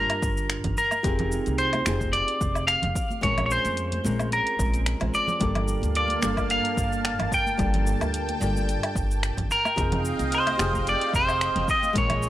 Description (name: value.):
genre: sunset chillout.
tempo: 110 BPM.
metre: 4/4.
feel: swing 54% on 16ths.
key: unclear.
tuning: A4 = 442 Hz.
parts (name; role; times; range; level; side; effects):
clean electric guitar; melody; 0.0-12.3 s; Bb4 to G5; -25 LUFS; equal; tape echo.
nylon-string guitar; accompaniment; 0.0-12.3 s; G3 to A5; -31 LUFS; moving between left 3 dB and right 4 dB; auto-pan, tape echo.
upright bass; bass; 0.0-12.3 s; F1 to F2; -29 LUFS; equal; tube saturation.
deep house drum kit; drums; 0.1-12.3 s; finger snaps, hi-hat, shaker, woodblock; -31 LUFS; equal; overdrive.
electronic kick drum; drums; 0.2-12.1 s; none; -30 LUFS; equal; overdrive.
congas; percussion; 0.6-12.2 s; none; -36 LUFS; right 2 dB; none.
lush unison pad; sustained chords; 5.7-12.3 s; Bb3 to C6; -31 LUFS; right 1 dB; chorus, phaser.
room: studio ambience.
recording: dry, gritty hardware recording.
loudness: -22 LUFS.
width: side -14 dB against mid.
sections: 0.0-12.3 A section.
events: none.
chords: 0.0 Gm9; 0.8 Fm9; 3.2 Bbm9; 5.4 Gm9; 9.5 Fm9.